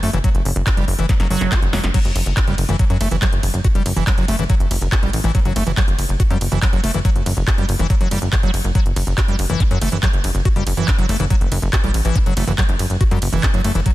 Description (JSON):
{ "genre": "psychedelic trance", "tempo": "141 BPM", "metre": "4/4", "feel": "straight", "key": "F# phrygian", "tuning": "A4 = 440 Hz", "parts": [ { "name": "liquid acid bass", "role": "riff", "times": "0.0-13.9 s", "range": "E3 to G4", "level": "-24 LUFS", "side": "moving between left 3 dB and right 4 dB", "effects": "chorus, auto-pan, cassette tape, sidechain pumping, digital delay" }, { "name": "plucky analog bass", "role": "bass", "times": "0.0-13.8 s", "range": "F#1 to F#2", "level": "-19 LUFS", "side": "equal", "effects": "none" }, { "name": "techno drum kit", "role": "drums", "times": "0.0-13.9 s", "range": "crash cymbal, handclaps, hi-hat, ride cymbal, snare drum", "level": "-25 LUFS", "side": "equal", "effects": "studio reverb" }, { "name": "electronic kick drum", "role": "drums", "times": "0.2-13.9 s", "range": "none", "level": "-17 LUFS", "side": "equal", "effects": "studio reverb" } ], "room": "digital ambience", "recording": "dense, heavily limited modern master", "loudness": "-15 LUFS", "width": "side -16 dB against mid", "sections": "0.0-13.9 A section", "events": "drum fill 1.1-1.9", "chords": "none" }